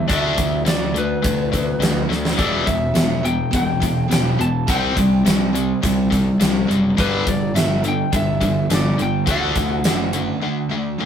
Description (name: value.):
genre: hard rock.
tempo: 105 BPM.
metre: 4/4.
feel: straight.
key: unclear.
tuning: A4 = 439 Hz.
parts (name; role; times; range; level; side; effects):
lightly driven lead guitar; melody; 0.0-11.0 s; B4 to A5; -25 LUFS; left 1 dB; none.
high-gain distorted guitar; riff; 0.0-11.1 s; E2 to D4; -23 LUFS; right 4 dB; distortion.
tight distorted guitar; riff; 0.0-11.1 s; E2 to D4; -22 LUFS; left 5 dB; distortion.
fuzz picked electric bass; bass; 0.0-10.3 s; E1 to D2; -24 LUFS; equal; overdrive.
gated 80s drum kit; drums; 0.1-10.3 s; hi-hat, kick drum, snare drum; -22 LUFS; equal; none.
room: wet small room reverb, RT60 0.5 s.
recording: rough rehearsal-room recording.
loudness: -16 LUFS.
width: side -8 dB against mid.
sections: 0.0-11.1 A section.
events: drum fill 2.1; break 10.4-11.1.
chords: 0.1 D5; 2.4 Em; 4.7 C5; 7.0 G5; 9.3 D.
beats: | 0.10 0.67 1.24 1.82 | 2.39 2.96 3.54 4.11 | 4.68 5.26 5.83 6.41 | 6.98 7.55 8.13 8.70 | 9.28 9.85 10.42 11.00.